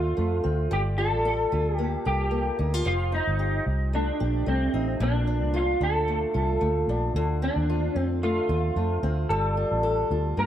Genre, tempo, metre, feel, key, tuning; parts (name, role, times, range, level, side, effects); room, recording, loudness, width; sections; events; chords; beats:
indie pop, bedroom pop; 112 BPM; 4/4; swing 55% on 16ths; Bb major; A4 = 445 Hz
electric guitar through a small old amp; melody; 0.0-10.5 s; C4 to Bb4; -28 LUFS; right 1 dB; ensemble chorus, analog delay
fingerpicked old ladder-braced acoustic guitar; accompaniment; 0.0-10.5 s; Bb2 to A4; -29 LUFS; left 1 dB; wide subtle chorus, warbly pitch drift
vintage muted fingered electric bass; bass; 0.0-10.5 s; F1 to G2; -26 LUFS; equal
moderate spring reverb, RT60 1.3 s, studio reverb; echo-heavy mix; -23 LUFS; side -10 dB against mid
0.0-10.5 A section
0.0 Dm7; 0.7 Gm9; 2.9 F9; 5.0 Bbmaj7; 7.2 Dm7; 9.3 G7sus2
0.18 | 0.72 1.25 1.79 2.33 | 2.86 3.40 3.94 4.47 | 5.01 5.54 6.08 6.62 | 7.15 7.69 8.23 8.76 | 9.30 9.84 10.37